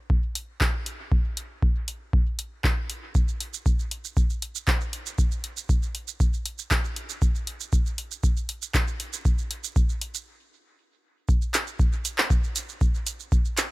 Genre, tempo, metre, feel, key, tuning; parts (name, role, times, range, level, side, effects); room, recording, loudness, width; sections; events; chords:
techno; 118 BPM; 4/4; straight
electronic kick drum; drums; 0.1-13.4 s; -23 LUFS; equal
deep house drum kit; drums; 0.4-13.7 s; handclaps, hi-hat, shaker; -28 LUFS; right 1 dB
little or no reverb; -24 LUFS; side -20 dB against mid
0.0-11.3 A section; 11.3-13.7 A section
stop 10.3-11.3